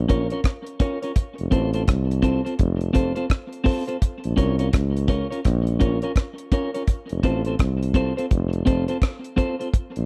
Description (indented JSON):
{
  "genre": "roots reggae",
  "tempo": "84 BPM",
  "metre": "4/4",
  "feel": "swing 63% on 16ths",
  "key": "unclear",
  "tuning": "A4 = 440 Hz",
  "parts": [
    { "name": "mellow tuba", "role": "bass", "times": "0.0-10.1 s", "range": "F1 to Db2", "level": "-25 LUFS", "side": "equal", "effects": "tube saturation" },
    { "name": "clean electric guitar", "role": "accompaniment", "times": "0.1-9.7 s", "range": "C4 to Db5", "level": "-28 LUFS", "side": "equal", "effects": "spring reverb, tape echo" },
    { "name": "deep reggae drum kit", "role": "drums", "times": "0.1-10.1 s", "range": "hi-hat, kick drum, rim click", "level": "-23 LUFS", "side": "equal", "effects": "none" }
  ],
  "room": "little or no reverb",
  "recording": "dry, close 1970s-style studio recording",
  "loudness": "-23 LUFS",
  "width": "mono",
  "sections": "0.0-10.1 A section",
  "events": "none",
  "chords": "0.0 Bbm; 1.2 F; 4.0 Bbm; 6.9 F"
}